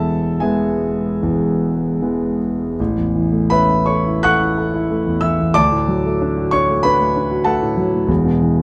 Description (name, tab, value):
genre	classical, romantic character piece for solo piano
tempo	72-98 BPM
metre	4/4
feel	rubato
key	A major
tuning	A4 = 440 Hz
part	warm concert grand piano	solo	0.0-8.6 s	E1 to F#6	-17 LUFS	equal	none
room	light reverb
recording	dark, warm production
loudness	-17 LUFS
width	mono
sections	0.0-2.8 A section; 2.8-8.6 B section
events	none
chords	0.0 E; 2.8 A; 5.5 D; 8.1 E5